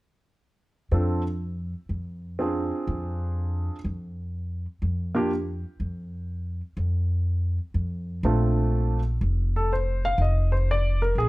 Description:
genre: jazz piano trio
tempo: 123 BPM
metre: 4/4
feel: swing 66% on 8ths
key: Bb major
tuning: A4 = 440 Hz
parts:
  - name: warm concert grand piano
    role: melody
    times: 0.9-5.3, 8.2-11.3 s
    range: A3 to F5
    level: -27 LUFS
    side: right 1 dB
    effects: none
  - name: upright bass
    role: bass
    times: 0.9-11.3 s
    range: F1 to F2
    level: -25 LUFS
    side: equal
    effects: none
room: little or no reverb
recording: none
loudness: -24 LUFS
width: side -20 dB against mid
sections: 0.4-8.2 A section; 8.2-11.3 B section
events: none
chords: 0.4 N.C.; 8.2 Bbmaj9; 10.2 Cmadd9/F (rootless)

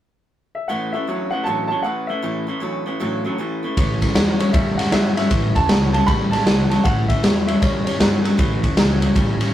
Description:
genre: rockabilly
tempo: 156 BPM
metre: 4/4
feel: swing 64% on 8ths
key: A mixolydian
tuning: A4 = 440 Hz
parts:
  - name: dark upright piano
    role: melody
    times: 0.5-9.4 s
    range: C#5 to B5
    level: -24 LUFS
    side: equal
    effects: none
  - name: picked steel-string acoustic guitar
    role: accompaniment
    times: 0.7-9.5 s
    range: A2 to A4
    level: -28 LUFS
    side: left 1 dB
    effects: none
  - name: electric guitar through a small old amp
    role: riff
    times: 0.7-9.5 s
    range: A2 to G3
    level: -25 LUFS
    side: right 1 dB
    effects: none
  - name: upright bass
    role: bass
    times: 3.8-9.4 s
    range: A1 to G2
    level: -24 LUFS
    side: equal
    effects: none
  - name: raw garage drum kit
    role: drums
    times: 3.8-9.5 s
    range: kick drum, ride cymbal, snare drum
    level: -17 LUFS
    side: equal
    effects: none
room: light reverb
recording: rough rehearsal-room recording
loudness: -16 LUFS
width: side -12 dB against mid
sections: 0.7-3.8 A section; 3.8-9.5 B section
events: none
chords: 0.0 N.C.; 0.7 A

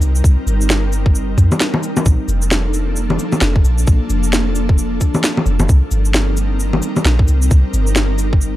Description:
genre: future garage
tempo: 132 BPM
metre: 4/4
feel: swing 60% on 16ths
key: C dorian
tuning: A4 = 439 Hz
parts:
  - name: ethereal airy pad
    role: sustained chords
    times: 0.0-8.6 s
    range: F3 to Bb4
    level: -22 LUFS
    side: left 1 dB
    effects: ensemble chorus, built-in reverb, vintage 12-bit sampler grit, sidechain pumping
  - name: soft 808-style bass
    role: bass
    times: 0.0-8.6 s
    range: F1 to F2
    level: -16 LUFS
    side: equal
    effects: sidechain pumping
  - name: electronic cabasa, shaker, snare drum and bongos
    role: drums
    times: 0.0-8.5 s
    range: none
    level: -18 LUFS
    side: equal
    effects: none
  - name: electronic kick drum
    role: drums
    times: 0.2-8.4 s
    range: none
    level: -13 LUFS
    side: equal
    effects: none
room: digital ambience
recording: dry, gritty hardware recording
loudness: -13 LUFS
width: side -15 dB against mid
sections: 0.0-8.6 A section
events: none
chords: 0.0 Cm7; 2.1 Bbmaj7; 5.7 Cm7

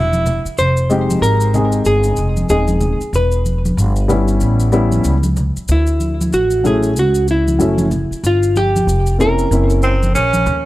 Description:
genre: hip hop, jazz-hop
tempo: 94 BPM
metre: 4/4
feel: swing 60% on 16ths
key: unclear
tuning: A4 = 440 Hz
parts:
  - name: breathy tenor saxophone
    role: second line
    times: 0.0-0.5, 9.8-10.7 s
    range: C4 to E4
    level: -17 LUFS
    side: right 2 dB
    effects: none
  - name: upright bass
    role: bass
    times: 0.0-10.7 s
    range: Eb1 to Eb2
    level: -16 LUFS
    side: equal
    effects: tube saturation
  - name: congas and maracas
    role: percussion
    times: 0.1-10.6 s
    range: none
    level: -23 LUFS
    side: equal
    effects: none
  - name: hollow-body jazz guitar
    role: melody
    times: 0.6-10.4 s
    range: E4 to C5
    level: -18 LUFS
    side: equal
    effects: tape echo
  - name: dark upright piano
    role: accompaniment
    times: 0.9-9.9 s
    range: F#3 to Ab4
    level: -18 LUFS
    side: left 2 dB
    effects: none
room: studio reverb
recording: dry, gritty hardware recording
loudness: -13 LUFS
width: side -16 dB against mid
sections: 0.0-10.7 A section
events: none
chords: 0.0 N.C.; 0.6 Fm7; 3.1 Em; 4.4 A9; 5.7 Dmaj7; 8.2 Gm7b5; 9.5 Gb7#11

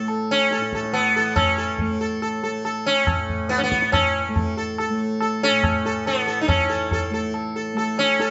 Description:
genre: indian classical, Hindustani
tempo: 141 BPM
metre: 3/4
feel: straight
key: unclear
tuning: A4 = 439 Hz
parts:
  - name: sitar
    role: melody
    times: 0.0-8.3 s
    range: B3 to A4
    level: -24 LUFS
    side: equal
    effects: none
  - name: tanpura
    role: drone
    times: 0.0-8.3 s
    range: A2 to A3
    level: -30 LUFS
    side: equal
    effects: none
  - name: tabla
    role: percussion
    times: 0.1-8.3 s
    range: none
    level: -29 LUFS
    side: equal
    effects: none
room: moderate stone room reverb, RT60 1.1 s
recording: band playing live in one room, nothing above 7.9 kHz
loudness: -22 LUFS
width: mono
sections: 0.0-6.5 A section; 6.5-8.3 B section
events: none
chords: none

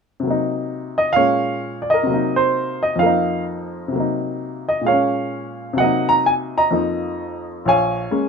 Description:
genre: solo jazz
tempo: 129 BPM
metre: 4/4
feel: swing 66% on 8ths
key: Bb minor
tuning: A4 = 440 Hz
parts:
  - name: warm upright piano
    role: solo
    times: 0.2-8.3 s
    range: Bb1 to Bb5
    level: -17 LUFS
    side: equal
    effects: none
room: light reverb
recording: none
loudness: -17 LUFS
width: side -5 dB against mid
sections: 0.2-7.6 A section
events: none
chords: 0.2 Cm7b5; 1.1 Bbm7; 2.1 Cm7b5; 3.0 F7sus4; 3.9 Cm7b5; 4.9 Bbm7; 5.8 Cm7b5; 6.7 F7sus4; 7.6 Bbm7

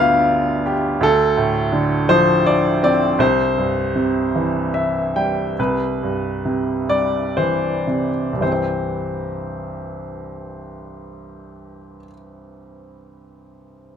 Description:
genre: classical, lyrical solo piano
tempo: 35-57 BPM (dotted quarters)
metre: 6/8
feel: rubato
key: C major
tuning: A4 = 439 Hz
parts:
  - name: clear baby grand piano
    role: solo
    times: 0.0-14.0 s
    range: C2 to G5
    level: -17 LUFS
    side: equal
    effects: none
room: light reverb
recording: close, detailed microphones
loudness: -16 LUFS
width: side -8 dB against mid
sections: 0.0-5.6 A section; 5.6-8.4 B section; 8.4-11.8 C section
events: slowing down 3.2-8.4; grand piano fill 4.3-5.6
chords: 0.0 G7; 1.0 Dm7; 3.2 C

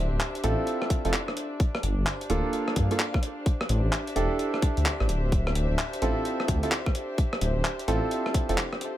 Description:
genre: UK garage, two-step garage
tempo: 129 BPM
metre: 4/4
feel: swing 63% on 16ths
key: D minor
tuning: A4 = 438 Hz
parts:
  - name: dark detuned saw bass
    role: bass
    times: 0.0-8.6 s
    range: D1 to G2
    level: -27 LUFS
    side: equal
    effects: none
  - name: dark studio string section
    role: texture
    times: 0.0-9.0 s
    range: D4 to F5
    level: -34 LUFS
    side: left 1 dB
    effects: sidechain pumping
  - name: breakbeat sampler-style drum kit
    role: drums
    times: 0.2-8.9 s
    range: handclaps, hi-hat, rim click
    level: -31 LUFS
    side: equal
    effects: overdrive
  - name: bright concert grand piano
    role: stabs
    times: 0.4-8.6 s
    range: Bb3 to A4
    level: -29 LUFS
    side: right 2 dB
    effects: digital delay
  - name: electronic kick drum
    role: drums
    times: 0.9-8.5 s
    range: none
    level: -25 LUFS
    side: equal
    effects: none
room: light reverb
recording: none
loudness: -24 LUFS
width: side -13 dB against mid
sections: 0.0-9.0 A section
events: none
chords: 0.0 Dm9; 1.6 Gm9; 3.5 A7sus4; 5.3 Dm9

